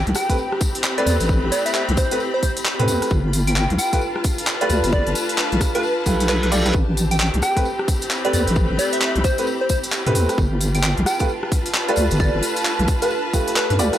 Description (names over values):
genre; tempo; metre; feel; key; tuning
UK garage, two-step garage; 132 BPM; 4/4; swing 62% on 16ths; A minor; A4 = 439 Hz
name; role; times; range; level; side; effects
ethereal airy pad; sustained chords; 0.0-14.0 s; C4 to B4; -33 LUFS; equal; ensemble chorus, built-in reverb, sidechain pumping
deep soft wobble bass; bass; 0.0-13.9 s; G1 to A2; -20 LUFS; equal; chorus, sidechain pumping
clear studio string section; texture; 0.0-14.0 s; C4 to B5; -27 LUFS; left 1 dB; sidechain pumping
garage drum kit; drums; 0.1-14.0 s; handclaps, hi-hat, rim click; -25 LUFS; equal; none
tambourine; percussion; 0.1-14.0 s; none; -32 LUFS; left 3 dB; none
plucky unison lead; melody; 0.2-13.8 s; B4 to G5; -25 LUFS; equal; analog delay
clear baby grand piano; stabs; 0.3-14.0 s; A3 to D5; -24 LUFS; right 1 dB; analog delay
electronic kick drum; drums; 0.3-13.4 s; none; -22 LUFS; equal; none
reverse cymbal; sound effects; 6.0-6.7 s; none; -27 LUFS; right 1 dB; none
room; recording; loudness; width
little or no reverb; dry, gritty hardware recording; -17 LUFS; side -12 dB against mid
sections
0.0-14.0 A section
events
reverse cymbal 6.0-6.7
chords
0.0 Am9; 3.1 G9; 6.7 Am9; 10.4 G9